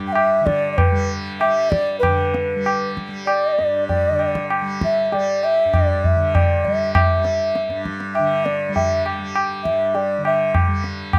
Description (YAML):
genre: indian classical, Hindustani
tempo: 98 BPM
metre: 4/4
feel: straight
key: unclear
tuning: A4 = 440 Hz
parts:
  - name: tanpura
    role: drone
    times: 0.0-11.2 s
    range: G2 to G3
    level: -29 LUFS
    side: equal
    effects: none
  - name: mellow hollow bansuri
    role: melody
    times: 0.1-11.2 s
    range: B4 to G5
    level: -21 LUFS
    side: equal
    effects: none
  - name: tabla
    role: percussion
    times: 0.2-11.2 s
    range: none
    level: -23 LUFS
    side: equal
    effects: none
room: moderate studio reverb, RT60 0.6 s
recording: none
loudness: -19 LUFS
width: mono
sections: 0.0-2.0 A section; 2.0-11.2 B section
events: speeding up 0.0-11.2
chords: none